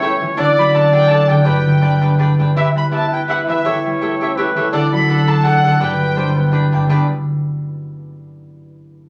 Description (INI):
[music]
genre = mexican folk, mariachi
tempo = 166 BPM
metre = 3/4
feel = swing 54% on 8ths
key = G major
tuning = A4 = 440 Hz
[part]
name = dark trumpet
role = second line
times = 0.0-7.1 s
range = A4 to D5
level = -21 LUFS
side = equal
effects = none
[part]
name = cavaquinho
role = accompaniment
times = 0.0-7.1 s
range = D4 to G5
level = -25 LUFS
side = equal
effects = none
[part]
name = concert harp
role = arpeggios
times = 0.0-8.4 s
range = G2 to E5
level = -18 LUFS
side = equal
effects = none
[part]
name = dark chamber violin section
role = melody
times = 0.4-6.5 s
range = D5 to B5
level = -23 LUFS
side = equal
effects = none
[sound]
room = wet studio reverb, RT60 0.6 s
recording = none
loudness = -15 LUFS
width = mono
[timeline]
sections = 0.0-2.6 A section; 2.6-6.9 B section; 6.9-8.0 C section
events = none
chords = 0.4 D; 1.5 G; 2.6 Em; 3.7 A7/E; 4.7 D; 5.8 G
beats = 0.02 | 0.38 0.74 1.10 | 1.46 1.82 2.19 | 2.56 2.92 3.29 | 3.65 4.01 4.37 | 4.73 5.09 5.45 | 5.81 6.17 6.54 | 6.91 7.27 7.63